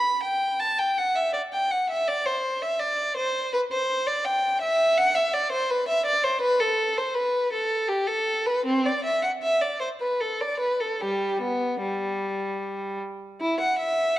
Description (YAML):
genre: classical, baroque-style suite movement for unaccompanied violin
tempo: 73-84 BPM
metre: 3/4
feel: rubato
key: G major from 4.3 s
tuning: A4 = 440 Hz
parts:
  - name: rich violin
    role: solo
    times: 0.0-14.2 s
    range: G3 to B5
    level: -23 LUFS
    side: equal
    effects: none
room: moderate scoring stage reverb, RT60 1.7 s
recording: dark, warm production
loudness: -23 LUFS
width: side -14 dB against mid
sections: 0.0-13.4 A section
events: none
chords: none